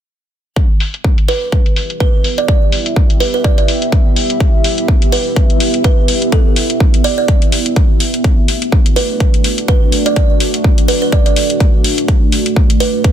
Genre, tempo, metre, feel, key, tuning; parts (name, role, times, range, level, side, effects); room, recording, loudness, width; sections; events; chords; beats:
bass house; 125 BPM; 4/4; swing 57% on 16ths; E minor; A4 = 440 Hz
deep dark ambient pad; sustained chords; 1.8-13.1 s; A3 to E5; -18 LUFS; right 1 dB; chorus, built-in reverb, sidechain pumping
electronic hi-hat; drums; 0.6-13.1 s; -19 LUFS; left 3 dB; low-pass filter on hats, small room ambience
electronic kick drum; drums; 0.6-13.1 s; -11 LUFS; equal; small room ambience
kalimba; melody; 1.3-13.0 s; A4 to D5; -19 LUFS; right 5 dB; digital delay
digital ambience; dense, heavily limited modern master; -10 LUFS; side -10 dB against mid
0.6-13.1 A section
0.6 Em; 8.2 D
| 0.56 1.04 1.52 2.00 | 2.48 2.96 3.44 3.92 | 4.40 4.88 5.36 5.84 | 6.32 6.80 7.28 7.76 | 8.24 8.72 9.20 9.68 | 10.16 10.64 11.12 11.60 | 12.08 12.56 13.04